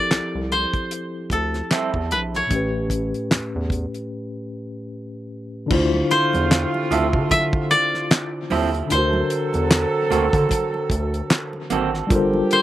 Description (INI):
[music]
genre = R&B, neo-soul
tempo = 75 BPM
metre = 4/4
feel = swing 58% on 16ths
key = unclear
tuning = A4 = 441 Hz
[part]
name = koto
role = melody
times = 0.0-12.6 s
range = A4 to E5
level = -21 LUFS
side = equal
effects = none
[part]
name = mellow tine electric piano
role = accompaniment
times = 0.0-12.6 s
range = A2 to C5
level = -25 LUFS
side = left 2 dB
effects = fast stereo tremolo
[part]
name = rubbery square bass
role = bass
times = 0.1-12.4 s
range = G1 to D3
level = -25 LUFS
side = equal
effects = none
[part]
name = damped 70s drum kit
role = drums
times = 0.1-12.6 s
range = crash cymbal, handclaps, hi-hat, kick drum, snare drum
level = -22 LUFS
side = equal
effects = none
[part]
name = electric guitar through a small old amp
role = second line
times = 1.7-1.9, 6.9-11.9 s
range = F3 to A4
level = -26 LUFS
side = right 7 dB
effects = spring reverb
[part]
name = warm saxophone section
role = stabs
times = 5.7-12.6 s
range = C3 to A4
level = -26 LUFS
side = right 3 dB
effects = slapback echo
[part]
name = congas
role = percussion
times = 5.7-12.5 s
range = none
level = -33 LUFS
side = right 2 dB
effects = none
[sound]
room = little or no reverb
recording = recorded outdoors, with no room sound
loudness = -18 LUFS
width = side -13 dB against mid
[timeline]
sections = 0.0-5.7 A section; 5.7-12.6 B section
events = break 4.1-5.7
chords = 0.0 Fmaj9; 2.5 A7; 5.7 Dm9; 8.9 D7b13; 12.1 Gm11